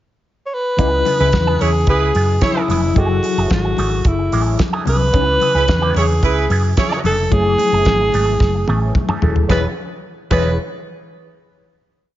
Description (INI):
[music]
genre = disco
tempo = 110 BPM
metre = 4/4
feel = straight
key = E major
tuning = A4 = 440 Hz
[part]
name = breathy alto saxophone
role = melody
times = 0.5-10.6 s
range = E4 to C#5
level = -18 LUFS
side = equal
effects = none
[part]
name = electric guitar with an envelope filter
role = accompaniment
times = 0.8-10.5 s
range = E3 to G#4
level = -27 LUFS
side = right 4 dB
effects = wah, spring reverb
[part]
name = mellow tine electric piano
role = accompaniment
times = 0.8-10.6 s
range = C#3 to C#5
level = -24 LUFS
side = left 4 dB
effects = medium stereo tremolo
[part]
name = hollow-body short-scale fingered electric bass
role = bass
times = 0.8-10.6 s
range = D#1 to F#2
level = -18 LUFS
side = equal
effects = none
[part]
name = damped 70s drum kit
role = drums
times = 0.8-10.4 s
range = crash cymbal, hi-hat, kick drum, snare drum, toms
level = -20 LUFS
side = equal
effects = none
[part]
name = congas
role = percussion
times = 0.8-10.6 s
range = none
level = -27 LUFS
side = left 5 dB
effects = none
[part]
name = warm horn section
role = stabs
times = 1.2-10.5 s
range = G#3 to C#5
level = -23 LUFS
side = right 4 dB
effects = none
[sound]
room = light reverb, studio ambience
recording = nothing above 7.5 kHz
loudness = -14 LUFS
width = side -13 dB against mid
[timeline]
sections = 0.0-0.8 pickup bar; 0.8-9.5 groove; 9.5-11.7 final chord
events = drum fill 8.4-9.5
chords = 0.0 N.C.; 0.8 C#m7; 3.0 F#m9; 5.1 C#m7; 7.3 F#m9; 9.5 E6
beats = 0.24 | 0.79 1.33 1.87 2.42 | 2.96 3.51 4.05 4.59 | 5.14 5.68 6.23 6.77 | 7.32 7.86 8.41 8.95 | 9.49 10.04